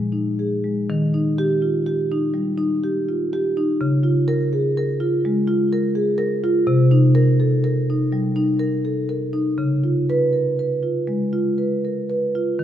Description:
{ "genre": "classical, contemporary piece for solo marimba", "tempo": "82 BPM", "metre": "4/4", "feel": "uneven beats, rubato", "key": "unclear", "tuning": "A4 = 437 Hz", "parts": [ { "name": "marimba with soft mallets", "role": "solo", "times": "0.0-12.6 s", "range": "Bb2 to Cb5", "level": "-18 LUFS", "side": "equal", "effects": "none" } ], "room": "moderate scoring stage reverb, RT60 1.8 s", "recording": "none", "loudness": "-18 LUFS", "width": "side -10 dB against mid", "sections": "0.9-12.6 A section", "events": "none", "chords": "0.0 Bb7sus4; 0.9 Eb; 3.8 Db6; 6.7 Cm7; 9.6 Db7", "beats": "0.12 | 0.90 1.64 2.37 3.09 | 3.83 4.55 5.25 5.96 | 6.67 7.39 8.11 8.84 | 9.57 10.32 11.06 11.82 | 12.57" }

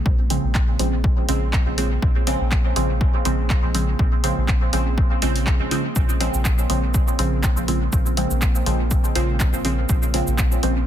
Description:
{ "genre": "dub techno", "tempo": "122 BPM", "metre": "4/4", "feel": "swing 55% on 16ths", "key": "Bb minor", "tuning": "A4 = 440 Hz", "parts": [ { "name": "warbly tape-like pad", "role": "sustained chords", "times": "0.0-10.9 s", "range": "Db3 to Bb4", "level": "-32 LUFS", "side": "right 4 dB", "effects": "chorus, built-in reverb, sidechain pumping" }, { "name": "soft dub sub bass", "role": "bass", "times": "0.1-10.9 s", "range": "Bb1", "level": "-23 LUFS", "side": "equal", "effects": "sidechain pumping" }, { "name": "electronic kick drum", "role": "drums", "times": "0.1-10.5 s", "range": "none", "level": "-20 LUFS", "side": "equal", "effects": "none" }, { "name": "filtered dub chord stab", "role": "stabs", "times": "0.3-10.8 s", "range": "Db3 to C4", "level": "-24 LUFS", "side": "right 1 dB", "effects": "chorus, phaser, sidechain pumping, dub echo" }, { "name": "punchy analog drum machine", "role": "drums", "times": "0.3-10.7 s", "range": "handclaps, hi-hat, shaker", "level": "-28 LUFS", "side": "equal", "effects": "dub echo" } ], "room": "little or no reverb", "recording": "dense, heavily limited modern master", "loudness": "-18 LUFS", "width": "side -10 dB against mid", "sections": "0.0-10.9 A section", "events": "none", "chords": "0.0 Bbm9", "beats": "| 0.06 0.55 1.04 1.53 | 2.02 2.52 3.01 3.50 | 3.99 4.48 4.97 5.47 | 5.96 6.45 6.94 7.43 | 7.93 8.42 8.91 9.40 | 9.89 10.38" }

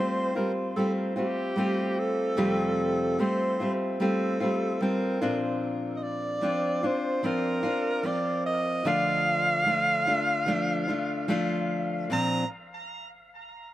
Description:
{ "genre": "pop", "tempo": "74 BPM", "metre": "4/4", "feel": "straight", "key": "Bb major", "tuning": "A4 = 439 Hz", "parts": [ { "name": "breathy alto saxophone", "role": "melody", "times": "0.0-12.5 s", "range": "G4 to Bb5", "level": "-29 LUFS", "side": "right 1 dB", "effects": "dub echo" }, { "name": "fingerpicked steel-string acoustic guitar", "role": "accompaniment", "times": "0.0-12.4 s", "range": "F2 to F4", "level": "-27 LUFS", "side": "left 1 dB", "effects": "none" } ], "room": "moderate spring reverb, RT60 2.0 s", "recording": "echo-heavy mix", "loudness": "-24 LUFS", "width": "side -14 dB against mid", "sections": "0.0-12.1 A section; 12.1-13.7 B section", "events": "none", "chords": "0.0 Fadd9; 5.2 Bbadd9; 8.9 Dm; 12.1 Bbadd9", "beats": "0.76 1.57 | 2.38 3.19 4.00 4.81 | 5.62 6.43 7.24 8.05 | 8.87 9.68 10.49 11.30 | 12.11" }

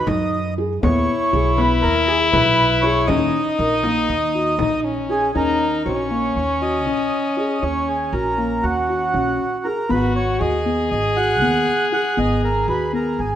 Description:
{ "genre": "contemporary instrumental, chamber music in an uneven meter", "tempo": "238 BPM (eighths)", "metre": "9/8", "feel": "straight", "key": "Eb phrygian", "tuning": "A4 = 440 Hz", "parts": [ { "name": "mellow accordion", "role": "melody", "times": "0.0-13.4 s", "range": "Gb4 to Gb5", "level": "-22 LUFS", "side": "right 2 dB", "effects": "none" }, { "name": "stopped French horn", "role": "second line", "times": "0.0-13.4 s", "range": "Db4 to Ab4", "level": "-21 LUFS", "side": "left 3 dB", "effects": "none" }, { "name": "upright bass", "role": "bass", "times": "0.0-13.4 s", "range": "Ab1 to F#2", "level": "-25 LUFS", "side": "right 2 dB", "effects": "none" }, { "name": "felt-muted upright piano", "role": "arpeggios", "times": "0.1-13.2 s", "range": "Bb3 to Bb4", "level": "-24 LUFS", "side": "left 1 dB", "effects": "none" }, { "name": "frame drum", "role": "percussion", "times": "0.1-4.8 s", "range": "none", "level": "-28 LUFS", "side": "left 2 dB", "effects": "none" } ], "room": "moderate scoring stage reverb, RT60 1.8 s", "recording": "none", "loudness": "-17 LUFS", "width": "side -10 dB against mid", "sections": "0.0-5.4 A section; 5.4-13.4 B section", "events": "none", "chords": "0.0 B (rootless); 0.8 E; 3.1 Eb7(no3); 5.4 Ebm7; 9.9 Abm7", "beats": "0.07 0.32 0.57 | 0.83 1.08 1.33 1.58 1.83 2.08 2.33 2.59 2.84 | 3.09 3.34 3.59 3.85 4.10 4.35 4.60 4.85 5.10 | 5.36 5.61 5.86 6.11 6.36 6.62 6.87 7.12 7.37 | 7.63 7.88 8.13 8.38 8.64 8.89 9.14 9.39 9.65 | 9.90 10.15 10.40 10.66 10.91 11.16 11.41 11.67 11.92 | 12.17 12.43 12.68 12.93 13.18" }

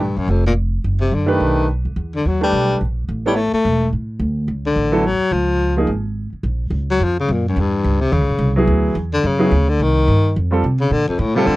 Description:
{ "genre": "jazz, small-group swing and bop", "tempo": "214 BPM", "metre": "4/4", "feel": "swing 59% on 8ths", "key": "unclear", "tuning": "A4 = 443 Hz", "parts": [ { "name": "breathy baritone saxophone", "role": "melody", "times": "0.0-11.6 s", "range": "F2 to A3", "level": "-18 LUFS", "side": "left 2 dB", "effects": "none" }, { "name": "upright bass", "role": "bass", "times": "0.0-11.6 s", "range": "E1 to C3", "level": "-19 LUFS", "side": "right 1 dB", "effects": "none" }, { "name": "clear baby grand piano", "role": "accompaniment", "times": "1.3-5.9, 8.6-11.6 s", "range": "E#3 to C#5", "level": "-18 LUFS", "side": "right 2 dB", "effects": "none" } ], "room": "little or no reverb", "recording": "dry, close 1970s-style studio recording", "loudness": "-15 LUFS", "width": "side -18 dB against mid", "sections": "0.0-6.4 A section; 6.4-11.6 B section", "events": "none", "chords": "0.0 Bbmaj7(no3); 0.8 D13/F#; 1.4 B7alt; 2.0 Em7; 3.1 A5; 4.2 D; 5.3 C#; 6.4 F#maj7; 7.6 Em; 8.1 D#5; 8.7 Dmaj7; 9.8 Cm; 10.4 F; 10.9 A#maj7", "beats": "0.00 0.28 0.56 | 0.84 1.12 1.40 1.68 | 1.96 2.24 2.52 2.80 | 3.08 3.36 3.64 3.92 | 4.20 4.48 4.76 5.04 | 5.32 5.60 5.88 6.16 | 6.44 6.72 7.00 7.28 | 7.56 7.84 8.12 8.40 | 8.68 8.96 9.23 9.52 | 9.79 10.07 10.35 10.63 | 10.91 11.19 11.47" }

